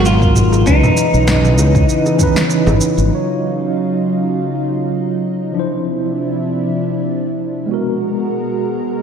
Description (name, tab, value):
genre	sunset chillout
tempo	98 BPM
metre	4/4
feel	swing 55% on 16ths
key	unclear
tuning	A4 = 439 Hz
part	clean electric guitar	melody	0.0-2.8 s	Eb4 to F4	-19 LUFS	left 2 dB	lush chorus, diffuse ambient delay
part	bright tine electric piano	accompaniment	0.0-9.0 s	Fb3 to Db5	-19 LUFS	moving between left 3 dB and right 4 dB	medium stereo tremolo, auto-pan, tape echo
part	lush unison pad	sustained chords	0.0-9.0 s	Cb3 to Bb4	-19 LUFS	right 1 dB	chorus
part	fretless electric bass	bass	0.0-3.1 s	Ab1 to Db2	-14 LUFS	equal	tube saturation, wide subtle chorus
part	deep house drum kit	drums	0.1-3.1 s	shaker, snare drum, toms	-20 LUFS	right 1 dB	none
part	electronic kick drum	drums	0.2-2.3 s	none	-16 LUFS	equal	none
part	bongos and congas	percussion	0.5-2.8 s	none	-23 LUFS	right 2 dB	none
room	moderate lush hall reverb, RT60 1.8 s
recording	dreamy mix soaked in reverb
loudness	-13 LUFS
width	side -7 dB against mid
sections	0.0-3.1 A section; 3.1-9.0 B section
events	none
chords	0.0 Abm9; 0.7 Dbm9; 3.1 Ebm9; 5.6 Dm9; 7.7 Abm9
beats	0.05 | 0.66 1.27 1.89 2.50 | 3.11 3.72 4.33 4.95 | 5.56 6.17 6.78 7.39 | 8.01 8.62